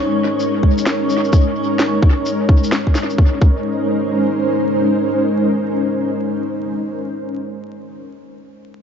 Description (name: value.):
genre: future garage.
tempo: 129 BPM.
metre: 4/4.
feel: swing 64% on 16ths.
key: Bb minor.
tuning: A4 = 440 Hz.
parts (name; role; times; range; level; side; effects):
ethereal airy pad; sustained chords; 0.0-6.9 s; Ab3 to Db5; -18 LUFS; equal; ensemble chorus, built-in reverb, tremolo, vintage 12-bit sampler grit, sidechain pumping.
backwards swelling texture; texture; 0.0-3.2 s; Db4; -26 LUFS; equal; built-in reverb.
electronic shaker and snare drum; drums; 0.4-3.2 s; none; -22 LUFS; equal; small room reverb, tape echo.
electronic kick drum; drums; 0.6-3.6 s; none; -12 LUFS; equal; small room reverb.
room: moderate spring reverb, RT60 2.5 s.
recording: echo-heavy mix, vinyl crackle, nothing above 7.6 kHz.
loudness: -15 LUFS.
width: side -7 dB against mid.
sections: 0.0-3.2 A section; 3.2-6.9 B section.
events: none.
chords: 0.0 Bbm11.